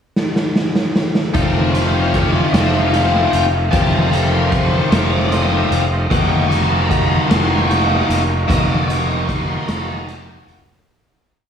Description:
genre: psychedelic rock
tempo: 50 BPM (dotted quarters)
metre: 6/8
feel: straight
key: unclear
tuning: A4 = 441 Hz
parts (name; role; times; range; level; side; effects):
- raw garage drum kit; drums; 0.2-10.7 s; hi-hat, kick drum, snare drum; -19 LUFS; equal; dub echo
- overdriven tonewheel organ; sustained chords; 1.3-10.8 s; Gb4 to F5; -29 LUFS; right 3 dB; slow rotary speaker, chorus vibrato
- overdriven electric guitar; riff; 1.3-10.6 s; Eb3 to Gb4; -17 LUFS; left 2 dB; flanger, dub echo
- fuzz fingered electric bass; bass; 1.3-10.8 s; F1; -19 LUFS; equal; overdrive
room: light reverb, studio ambience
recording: echo-heavy mix, studio reverb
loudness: -14 LUFS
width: side -8 dB against mid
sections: 0.0-1.3 pickup bar; 1.3-10.9 groove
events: drum fill 0.2-1.3; fade-out 8.5-10.9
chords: 0.0 N.C.; 1.3 F7; 6.1 Ebmadd9/F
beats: 0.15 | 1.34 2.53 | 3.73 4.92 | 6.11 7.30 | 8.49 9.68

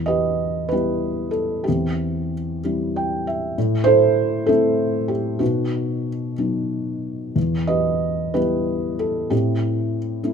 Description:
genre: classical, lyrical solo piano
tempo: 63 BPM (dotted quarters)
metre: 6/8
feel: uneven beats, rubato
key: E harmonic minor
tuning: A4 = 440 Hz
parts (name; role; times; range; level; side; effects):
- felt-muted upright piano; solo; 0.0-10.3 s; E2 to G5; -19 LUFS; equal; none
room: light reverb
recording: close, detailed microphones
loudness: -19 LUFS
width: side -6 dB against mid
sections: 0.0-10.3 A section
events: felt piano fill 2.6-3.6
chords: 0.0 Em; 1.7 C/E; 3.6 Am; 5.4 B; 7.4 Em; 9.3 Am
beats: 0.71 | 1.67 2.63 | 3.56 4.48 | 5.41 6.38 | 7.37 8.36 | 9.32 10.25

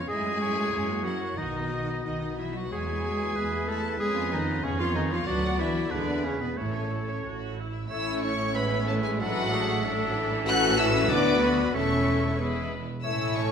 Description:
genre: quick classical-period movement for symphony orchestra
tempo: 93 BPM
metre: 2/4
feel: straight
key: A major from 5.3 s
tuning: A4 = 439 Hz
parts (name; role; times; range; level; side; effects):
- rich chamber violin section; melody; 0.0-13.5 s; A#4 to F#6; -34 LUFS; left 2 dB; none
- rich chamber violin section; second line; 0.0-13.5 s; E4 to A5; -35 LUFS; left 2 dB; none
- warm oboe; second line; 0.0-13.5 s; B4 to E5; -34 LUFS; right 1 dB; none
- rich chamber viola section; accompaniment; 0.0-13.5 s; E3 to D5; -34 LUFS; right 1 dB; none
- warm French horn section; sustained chords; 0.0-13.5 s; F#3 to A4; -33 LUFS; left 4 dB; none
- warm chamber double bass section; bass; 0.0-13.5 s; E1 to F#2; -33 LUFS; right 2 dB; none
- clear clarinet; second line; 0.1-13.5 s; A3 to B4; -32 LUFS; left 1 dB; none
- warm chamber cello section; bass; 0.1-13.5 s; D2 to A3; -34 LUFS; right 2 dB; none
- flute section; second line; 7.9-13.5 s; F#4 to F#5; -34 LUFS; left 2 dB; none
room: wet recital hall reverb, RT60 1.4 s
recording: minimal, uncompressed stereo recording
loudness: -24 LUFS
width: side -7 dB against mid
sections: 0.0-7.9 A section; 7.9-13.5 B section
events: none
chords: 0.1 F#m7; 0.7 F#7; 1.4 B; 2.7 E; 4.0 C#7/E#; 5.3 Bm/D; 5.9 E7; 6.6 A; 9.2 D/A; 10.5 A; 11.1 Bm/D; 11.7 A/E; 12.4 E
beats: | 0.10 0.73 | 1.39 2.05 | 2.72 3.36 | 4.00 4.64 | 5.27 5.91 | 6.57 7.24 | 7.90 8.54 | 9.19 9.83 | 10.46 11.10 | 11.74 12.39 | 13.05

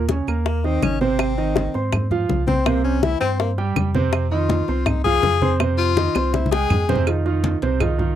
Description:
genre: Afro-Cuban jazz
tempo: 163 BPM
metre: 4/4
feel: straight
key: F minor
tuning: A4 = 440 Hz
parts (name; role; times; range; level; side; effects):
- clear concert grand piano; accompaniment; 0.0-8.2 s; C3 to C6; -23 LUFS; right 6 dB; none
- pure sine sub bass; bass; 0.0-8.1 s; Ab1 to Ab2; -23 LUFS; equal; none
- bongos and cowbell; percussion; 0.1-8.0 s; none; -24 LUFS; left 8 dB; none
- congas; percussion; 0.1-8.2 s; none; -25 LUFS; left 1 dB; none
- claves; percussion; 0.3-8.0 s; none; -29 LUFS; right 12 dB; none
- warm tenor saxophone; second line; 0.5-7.0 s; Bb3 to Ab4; -23 LUFS; left 8 dB; none
room: little or no reverb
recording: dry, close 1970s-style studio recording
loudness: -18 LUFS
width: side -11 dB against mid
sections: 0.0-7.1 A section; 7.1-8.2 A section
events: tenor saxophone solo 0.0-8.2; drum fill 6.2-7.1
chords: 0.0 Eb5; 1.2 Ab6; 2.7 C; 4.1 Fm7; 6.3 C5; 7.1 F7(no3)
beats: 0.09 0.46 0.83 | 1.20 1.56 1.93 2.30 | 2.67 3.03 3.40 3.77 | 4.13 4.50 4.87 5.24 | 5.60 5.97 6.34 6.70 | 7.07 7.44 7.80

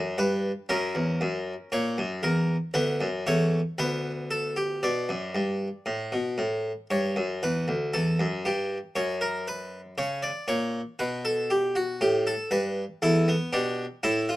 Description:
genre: classical, baroque-style 3-part fugue for harpsichord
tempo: 58 BPM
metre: 4/4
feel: straight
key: unclear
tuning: A4 = 440 Hz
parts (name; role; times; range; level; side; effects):
- harpsichord; solo; 0.0-14.4 s; D2 to D5; -25 LUFS; equal; none
room: light reverb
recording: close, detailed microphones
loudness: -25 LUFS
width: side -16 dB against mid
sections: 0.0-4.8 A section; 4.8-14.4 B section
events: none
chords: 0.0 Em (rootless); 0.7 F#; 2.7 Bm/D; 4.8 G; 6.9 C#dim; 9.0 F#; 11.0 B5; 13.0 Em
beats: | 0.69 1.72 2.75 3.79 | 4.83 5.87 6.91 7.94 | 8.96 9.98 10.99 12.01 | 13.03 14.03

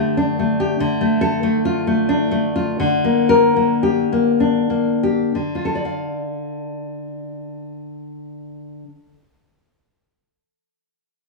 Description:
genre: romantic piece for solo classical guitar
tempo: 60-98 BPM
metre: 3/4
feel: rubato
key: D minor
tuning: A4 = 443 Hz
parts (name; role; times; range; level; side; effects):
- nylon-string guitar; solo; 0.0-9.3 s; D3 to F5; -17 LUFS; left 2 dB; none
room: moderate large studio reverb, RT60 1.1 s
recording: band playing live in one room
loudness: -16 LUFS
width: side +0 dB against mid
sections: 0.0-5.4 A section; 5.4-11.0 B section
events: slowing down 0.0-5.4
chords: 0.0 Dsus4; 0.8 Dm; 2.8 Gm/D; 5.4 Dm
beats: 0.17 | 0.79 1.42 2.09 | 2.79 3.56 4.40 | 5.36 6.30 7.26 | 8.19 9.12

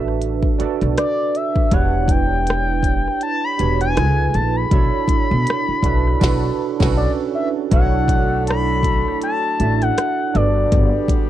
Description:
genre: R&B, neo-soul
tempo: 80 BPM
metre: 4/4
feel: swing 57% on 16ths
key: B minor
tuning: A4 = 442 Hz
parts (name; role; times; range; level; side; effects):
- barky tine electric piano; accompaniment; 0.0-11.3 s; C#4 to E5; -22 LUFS; right 10 dB; overdrive, analog chorus
- upright bass; bass; 0.0-11.1 s; E1 to B2; -20 LUFS; left 1 dB; none
- minimal click drum kit; drums; 0.1-11.3 s; crash cymbal, hi-hat, kick drum, rim click, snare drum; -19 LUFS; left 1 dB; none
- expressive synth lead; melody; 1.0-11.1 s; D5 to B5; -21 LUFS; left 3 dB; chorus
- mellow horn section; stabs; 7.7-11.3 s; D3 to A4; -28 LUFS; left 7 dB; none
room: little or no reverb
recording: dry, close 1970s-style studio recording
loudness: -16 LUFS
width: side -12 dB against mid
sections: 0.0-7.7 A section; 7.7-11.3 A section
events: band accent 6.2-7.7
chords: 0.0 Gmaj9 (rootless); 1.7 Em9; 4.0 C#7b13; 4.7 Bm9; 10.3 Gmaj9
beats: 0.21 0.96 | 1.71 2.46 3.21 3.96 | 4.71 5.46 6.21 6.96 | 7.71 8.46 9.21 9.96 | 10.71

